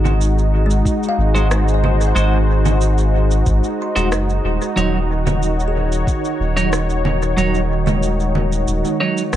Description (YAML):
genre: ambient dub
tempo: 92 BPM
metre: 4/4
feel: straight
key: Eb dorian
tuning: A4 = 440 Hz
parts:
  - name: warm analog pad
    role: sustained chords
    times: 0.0-9.4 s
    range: Eb3 to Db5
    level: -21 LUFS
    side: equal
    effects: chorus
  - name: soft dub sub bass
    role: bass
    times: 0.0-9.4 s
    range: Eb1 to Ab1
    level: -17 LUFS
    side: equal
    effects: none
  - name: electronic congas, shaker and rim click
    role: drums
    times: 0.1-9.4 s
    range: none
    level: -25 LUFS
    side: right 2 dB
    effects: dub echo
  - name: kalimba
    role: arpeggios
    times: 0.7-9.4 s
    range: Ab3 to C6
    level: -27 LUFS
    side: left 1 dB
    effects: analog delay
  - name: electronic kick drum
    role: drums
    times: 0.9-6.2 s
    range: none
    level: -19 LUFS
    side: equal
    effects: none
  - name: clean electric guitar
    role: stabs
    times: 1.3-9.2 s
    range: Gb3 to Db5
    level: -24 LUFS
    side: right 3 dB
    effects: dub echo
room: light reverb, digital ambience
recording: echo-heavy mix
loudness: -15 LUFS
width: side -12 dB against mid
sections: 0.0-9.4 A section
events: kick drops out 8.7-9.4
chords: 0.0 Ab7; 4.8 Ebm7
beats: 0.20 0.85 1.51 | 2.16 2.81 3.46 4.12 | 4.77 5.42 6.07 6.72 | 7.38 8.03 8.68 9.33